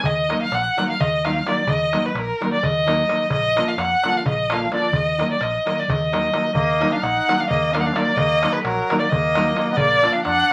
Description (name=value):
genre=balkan folk, Balkan wedding band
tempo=258 BPM (eighths)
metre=7/8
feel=straight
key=Eb harmonic minor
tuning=A4 = 440 Hz
part: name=rich violin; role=melody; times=0.0-10.5 s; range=Bb4 to Gb5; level=-22 LUFS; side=equal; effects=none
part: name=vintage muted fingered electric bass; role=bass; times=0.0-10.4 s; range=Bb1 to F2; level=-31 LUFS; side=equal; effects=none
part: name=darbuka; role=percussion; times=0.0-10.4 s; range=none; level=-28 LUFS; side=equal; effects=none
part: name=nylon-string guitar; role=accompaniment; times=0.3-10.5 s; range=D3 to Eb4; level=-28 LUFS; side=equal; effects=none
part: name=warm trumpet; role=second line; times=6.5-10.5 s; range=Gb3 to Eb4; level=-28 LUFS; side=equal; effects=none
room=wet studio ambience, RT60 0.5 s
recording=vinyl crackle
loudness=-20 LUFS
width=mono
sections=0.0-6.6 A section; 6.6-10.5 A section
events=none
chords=0.0 Ebm; 3.3 Bb; 4.9 Ebm; 9.8 Bb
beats=| 0.03 0.26 0.50 0.73 0.96 1.20 1.43 | 1.67 1.90 2.13 2.37 2.60 2.83 3.07 | 3.30 3.53 3.77 4.00 4.23 4.46 4.70 | 4.93 5.16 5.39 5.63 5.86 6.09 6.32 | 6.55 6.78 7.01 7.25 7.48 7.71 7.94 | 8.17 8.40 8.63 8.86 9.09 9.32 9.55 | 9.78 10.01 10.24 10.47